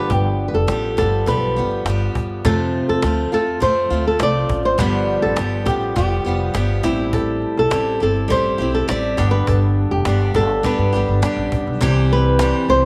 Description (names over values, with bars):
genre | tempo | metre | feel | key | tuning
acoustic pop | 102 BPM | 4/4 | straight | unclear | A4 = 440 Hz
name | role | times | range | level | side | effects
flamenco guitar | melody | 0.0-12.9 s | G4 to D5 | -22 LUFS | equal | none
picked steel-string acoustic guitar | accompaniment | 0.0-12.9 s | F2 to G4 | -24 LUFS | equal | none
upright bass | bass | 0.0-12.9 s | F1 to G2 | -23 LUFS | equal | none
cajon | drums | 0.1-12.6 s | none | -28 LUFS | equal | none
room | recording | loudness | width
moderate plate reverb, RT60 2.1 s | none | -18 LUFS | mono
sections
0.0-11.8 A section; 11.8-12.9 B section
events
none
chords
0.0 G7; 2.4 F; 4.8 G7; 6.8 Am7; 9.2 G; 11.8 C